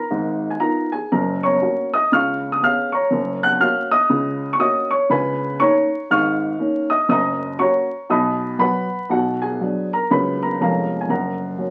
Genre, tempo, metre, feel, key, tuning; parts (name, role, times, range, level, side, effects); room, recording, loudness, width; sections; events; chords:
jazz, stride piano; 120 BPM; 4/4; swing 61% on 8ths; F# major; A4 = 442 Hz
dark upright piano; solo; 0.0-11.7 s; E#1 to F#6; -20 LUFS; equal
wet studio reverb, RT60 0.6 s; very old 78 rpm record, vinyl crackle; -20 LUFS; mono
0.0-11.7 A section
0.0 C#9 (rootless); 1.1 F#; 2.1 C#7; 3.1 F#; 5.1 C#13; 7.1 F#; 8.1 B; 9.1 Bm; 10.1 F#/C#; 10.6 C#7/E#; 11.1 F#